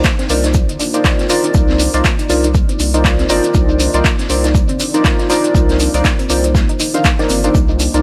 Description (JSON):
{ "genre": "deep house", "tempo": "120 BPM", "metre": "4/4", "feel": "swing 58% on 16ths", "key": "C minor", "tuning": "A4 = 441 Hz", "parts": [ { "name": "dark analog pad", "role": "sustained chords", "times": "0.0-8.0 s", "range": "Bb3 to G5", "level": "-27 LUFS", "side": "equal", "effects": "chorus, sidechain pumping" }, { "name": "soft round pluck", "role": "arpeggios", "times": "0.0-8.0 s", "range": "Bb3 to Eb4", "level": "-25 LUFS", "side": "equal", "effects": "chorus, sidechain pumping, tape echo" }, { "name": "chorused polysynth", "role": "stabs", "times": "0.0-8.0 s", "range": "Eb4 to F5", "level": "-19 LUFS", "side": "equal", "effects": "vintage 12-bit sampler grit, delay" }, { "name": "round analog bass", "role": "bass", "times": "0.0-8.0 s", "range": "G1 to C2", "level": "-20 LUFS", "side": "equal", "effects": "sidechain pumping" }, { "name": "deep house drum kit", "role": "drums", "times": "0.0-8.0 s", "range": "handclaps, hi-hat", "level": "-23 LUFS", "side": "equal", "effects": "small room ambience" }, { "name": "electronic kick drum", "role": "drums", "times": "0.0-7.7 s", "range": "none", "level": "-17 LUFS", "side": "equal", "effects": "small room ambience" }, { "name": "vintage drum kit", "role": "drums", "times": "0.0-7.9 s", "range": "hi-hat, shaker, snare drum", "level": "-30 LUFS", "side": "equal", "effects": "none" }, { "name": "shekere", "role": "percussion", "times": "0.0-8.0 s", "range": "none", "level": "-27 LUFS", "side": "equal", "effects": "none" } ], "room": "light reverb", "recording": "none", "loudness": "-14 LUFS", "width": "mono", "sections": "0.0-8.0 A section", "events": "none", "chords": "0.0 Cm11", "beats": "0.05 0.55 1.05 | 1.55 2.05 2.55 3.05 | 3.55 4.05 4.55 5.05 | 5.55 6.05 6.55 7.05 | 7.55" }